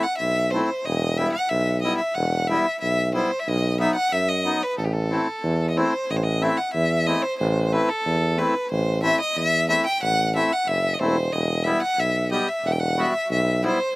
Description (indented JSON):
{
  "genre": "klezmer",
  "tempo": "92 BPM",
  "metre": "2/4",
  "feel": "straight",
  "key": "A dorian sharp4",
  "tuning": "A4 = 440 Hz",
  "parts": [
    { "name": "clear violin", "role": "melody", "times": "0.0-14.0 s", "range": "G4 to G5", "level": "-23 LUFS", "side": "equal", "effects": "none" },
    { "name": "accordion", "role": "accompaniment", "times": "0.0-13.8 s", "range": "F#3 to G4", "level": "-25 LUFS", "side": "left 1 dB", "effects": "slapback echo" },
    { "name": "clear tuba", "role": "bass", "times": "0.2-13.7 s", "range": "E1 to F#2", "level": "-24 LUFS", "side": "equal", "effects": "none" }
  ],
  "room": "little or no reverb",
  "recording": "recorded outdoors, with no room sound",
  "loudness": "-20 LUFS",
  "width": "side -21 dB against mid",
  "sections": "0.0-6.1 A section; 6.1-14.0 A section",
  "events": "none",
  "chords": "0.0 Am; 0.9 Em; 3.5 B; 4.8 Am; 11.3 Em"
}